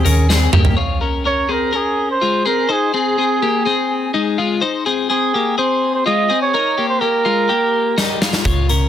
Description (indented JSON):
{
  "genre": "jangly indie pop",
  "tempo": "125 BPM",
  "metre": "4/4",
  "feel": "straight",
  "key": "Ab major",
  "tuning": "A4 = 440 Hz",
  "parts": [
    { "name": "clear flugelhorn", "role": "melody", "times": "0.0-8.2 s", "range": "Ab4 to Eb5", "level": "-19 LUFS", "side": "right 4 dB", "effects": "digital delay" },
    { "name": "twelve-string electric guitar", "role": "arpeggios", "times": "0.0-8.9 s", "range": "G3 to Db5", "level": "-18 LUFS", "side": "left 5 dB", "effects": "digital delay" },
    { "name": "vintage muted picked electric bass", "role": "bass", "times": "0.1-0.7, 8.4-8.9 s", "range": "Db2 to G2", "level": "-15 LUFS", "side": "equal", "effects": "none" },
    { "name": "big rock drum kit", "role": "drums", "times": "0.1-0.8, 8.0-8.8 s", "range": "hi-hat, kick drum, snare drum, toms", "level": "-18 LUFS", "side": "right 1 dB", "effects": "none" }
  ],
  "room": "moderate club reverb, RT60 0.5 s",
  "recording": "dense, heavily limited modern master",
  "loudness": "-14 LUFS",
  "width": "side -10 dB against mid",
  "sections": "0.8-8.9 A section",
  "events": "drum fill 0.3-0.8, 8.0-8.5",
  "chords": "0.0 Abmaj7; 0.8 Db6; 2.7 Abadd9; 6.5 Ebadd9",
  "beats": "0.30 | 0.78 1.25 1.74 2.21 | 2.69 3.18 3.66 4.14 | 4.62 5.10 5.58 6.06 | 6.54 7.02 7.50 7.97 | 8.45"
}